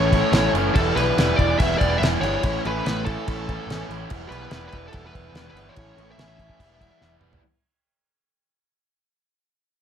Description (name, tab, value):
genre	garage rock duo or trio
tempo	144 BPM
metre	4/4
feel	straight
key	E dorian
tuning	A4 = 440 Hz
part	fuzz lead guitar	melody	0.0-7.1 s	A4 to E5	-26 LUFS	left 2 dB	distortion, plate reverb
part	raw garage guitar	riff	0.0-7.4 s	A2 to E4	-25 LUFS	right 1 dB	overdrive
part	growling picked electric bass	bass	0.0-7.4 s	E1 to B1	-27 LUFS	equal	overdrive
part	cloth-damped thuddy drum kit	drums	0.1-7.4 s	crash cymbal, kick drum, snare drum, toms	-24 LUFS	equal	none
room	light reverb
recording	none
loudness	-19 LUFS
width	side -8 dB against mid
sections	0.0-7.4 A section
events	fade-out 0.0-7.4; drum fill 7.0-7.4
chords	0.0 A; 0.8 Em; 2.4 A; 4.1 Em; 5.8 A; 6.6 Em